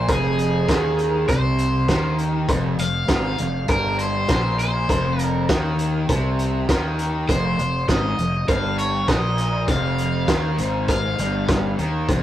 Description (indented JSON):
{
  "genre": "indie rock",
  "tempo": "100 BPM",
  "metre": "4/4",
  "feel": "straight",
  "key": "F minor",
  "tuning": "A4 = 441 Hz",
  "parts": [
    { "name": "crunchy overdriven guitar", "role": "melody", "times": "0.0-11.7 s", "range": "Ab4 to F5", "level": "-25 LUFS", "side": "equal", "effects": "none" },
    { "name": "cranked stack guitar", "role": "riff", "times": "0.0-12.2 s", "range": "F2 to Eb3", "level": "-25 LUFS", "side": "equal", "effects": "overdrive" },
    { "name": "fuzz fingered electric bass", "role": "bass", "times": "0.0-12.2 s", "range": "F1 to Eb2", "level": "-24 LUFS", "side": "equal", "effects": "overdrive" },
    { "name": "loose indie drum kit", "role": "drums", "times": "0.1-12.2 s", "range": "hi-hat, kick drum, snare drum", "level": "-22 LUFS", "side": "equal", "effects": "none" }
  ],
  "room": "wet booth ambience, RT60 0.2 s",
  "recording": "rough rehearsal-room recording, warm saturation",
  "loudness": "-18 LUFS",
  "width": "side -12 dB against mid",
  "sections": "0.0-12.2 A section",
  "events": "none",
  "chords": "0.0 Fm"
}